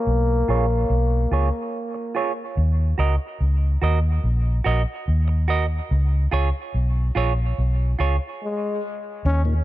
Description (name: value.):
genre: reggae.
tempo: 72 BPM.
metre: 4/4.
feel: straight.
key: unclear.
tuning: A4 = 440 Hz.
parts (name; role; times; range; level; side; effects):
clear trombone; melody; 0.0-2.1, 8.4-9.4 s; Ab3 to Db4; -25 LUFS; left 2 dB; low-pass filter, dub echo.
vintage muted fingered electric bass; bass; 0.1-9.6 s; Bb1 to Eb2; -19 LUFS; equal; none.
semi-hollow electric guitar; accompaniment; 0.5-8.2 s; F4 to Eb5; -28 LUFS; right 6 dB; low-pass filter, dub echo.
tonewheel organ; accompaniment; 9.4-9.5 s; Eb2 to Bb2; -29 LUFS; left 4 dB; overdrive, slow rotary speaker.
room: light reverb.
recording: dark, warm production.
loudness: -20 LUFS.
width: side -15 dB against mid.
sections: 0.0-9.2 A section.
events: filter sweep 0.0-9.2; stop 8.4-9.2.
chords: 0.0 Db; 2.6 Ebm; 5.9 Db.